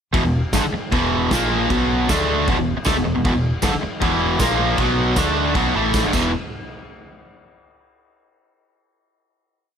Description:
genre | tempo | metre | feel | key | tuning
garage rock duo or trio | 155 BPM | 4/4 | straight | unclear | A4 = 439 Hz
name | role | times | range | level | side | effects
cranked stack guitar | riff | 0.1-6.3 s | E2 to D4 | -18 LUFS | equal | overdrive
overdriven fingered electric bass | bass | 0.1-6.3 s | E1 to D2 | -26 LUFS | equal | tube saturation
raw garage drum kit | drums | 0.1-6.2 s | crash cymbal, kick drum, snare drum | -24 LUFS | equal | none
tambourine | percussion | 0.5-6.3 s | none | -32 LUFS | right 5 dB | none
room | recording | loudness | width
light reverb, small room reverb | none | -17 LUFS | side -8 dB against mid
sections
0.1-6.3 riff; 6.3-7.9 final hit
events
drum fill 6.1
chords
0.1 E5; 1.3 A#5; 1.7 B5; 2.1 D5; 2.5 E5; 4.4 A#5; 4.8 B5; 5.2 D5; 5.6 E5; 6.3 N.C.

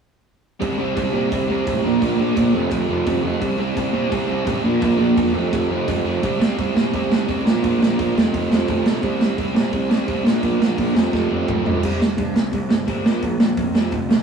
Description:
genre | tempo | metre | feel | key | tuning
punk rock | 171 BPM | 4/4 | straight | C mixolydian | A4 = 444 Hz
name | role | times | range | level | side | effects
crunchy overdriven guitar | riff | 0.6-14.2 s | F2 to C4 | -22 LUFS | left 1 dB | none
overdriven semi-hollow guitar | riff | 0.6-11.8 s | F2 to F4 | -23 LUFS | right 6 dB | none
fuzz picked electric bass | bass | 0.6-14.2 s | E1 to Bb2 | -28 LUFS | equal | overdrive
raw garage drum kit | drums | 0.6-14.2 s | crash cymbal, hi-hat, kick drum, snare drum, toms | -21 LUFS | right 2 dB | none
room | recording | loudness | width
moderate stone room reverb, RT60 1.0 s | rough rehearsal-room recording, small room ambience | -17 LUFS | side -6 dB against mid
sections
0.6-11.8 A section; 11.8-14.2 B section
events
drum fill 11.1-11.8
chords
0.6 C; 1.8 Bb; 2.5 F; 3.4 C; 4.6 Bb; 5.3 F; 6.2 C; 7.5 Bb; 8.2 F; 9.0 C; 10.3 Bb; 11.0 F; 11.8 C5; 13.0 Bb5

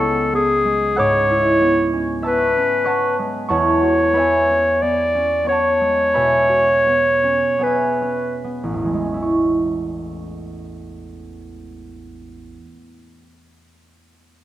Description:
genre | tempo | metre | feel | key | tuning
classical, impressionist duo for clarinet and harp | 35-50 BPM | 4/4 | rubato | A major | A4 = 440 Hz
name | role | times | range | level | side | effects
clear clarinet | melody | 0.0-8.4 s | G#4 to D5 | -16 LUFS | left 1 dB | none
concert harp | accompaniment | 0.0-12.7 s | A1 to F#6 | -21 LUFS | right 2 dB | none
room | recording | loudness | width
wet scoring stage reverb, RT60 1.9 s | dark, warm production | -15 LUFS | side -13 dB against mid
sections
0.0-9.2 A section; 9.2-14.4 B section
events
slowing down 0.0-9.2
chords
0.0 C#m7; 3.5 E13; 9.2 Amaj7

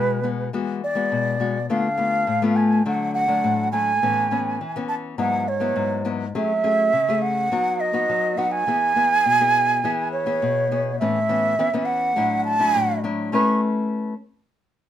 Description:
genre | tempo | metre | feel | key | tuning
samba | 103 BPM | 4/4 | straight | A major | A4 = 436 Hz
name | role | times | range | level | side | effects
concert flute | melody | 0.0-13.6 s | B4 to C#6 | -20 LUFS | right 2 dB | none
nylon-string guitar | accompaniment | 0.0-14.1 s | G#2 to B4 | -23 LUFS | left 4 dB | none
room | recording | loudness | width
moderate studio ambience, RT60 0.5 s | minimal, uncompressed stereo recording | -19 LUFS | side -11 dB against mid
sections
0.0-11.0 A section; 11.0-13.3 B section; 13.3-14.9 C section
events
none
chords
0.0 Eadd9; 1.7 Dm6; 2.9 D; 4.0 Aadd9; 5.2 Eadd9/G#; 6.3 F#madd9; 7.5 B/F#; 8.7 E; 11.0 Aadd9; 12.2 Dadd9/A; 13.3 Aadd9

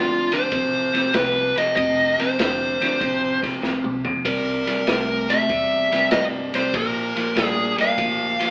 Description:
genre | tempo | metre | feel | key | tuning
electric blues shuffle | 97 BPM | 4/4 | swing 68% on 8ths | F major | A4 = 439 Hz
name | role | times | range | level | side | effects
dark smooth lead guitar | melody | 0.0-8.5 s | F4 to F5 | -20 LUFS | equal | overdrive
clean electric guitar | riff | 0.0-8.5 s | F2 to A3 | -25 LUFS | equal | none
upright bass | bass | 0.0-8.3 s | F1 to G2 | -39 LUFS | equal | none
vintage drum kit | drums | 0.3-8.5 s | kick drum, ride cymbal, snare drum, toms | -25 LUFS | equal | none
room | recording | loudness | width
moderate stone room reverb, RT60 1.2 s | band playing live in one room, AM radio sound | -18 LUFS | side -31 dB against mid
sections
0.0-8.5 A section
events
drum fill 3.6-4.3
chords
0.0 F; 4.3 C7; 6.7 Bb

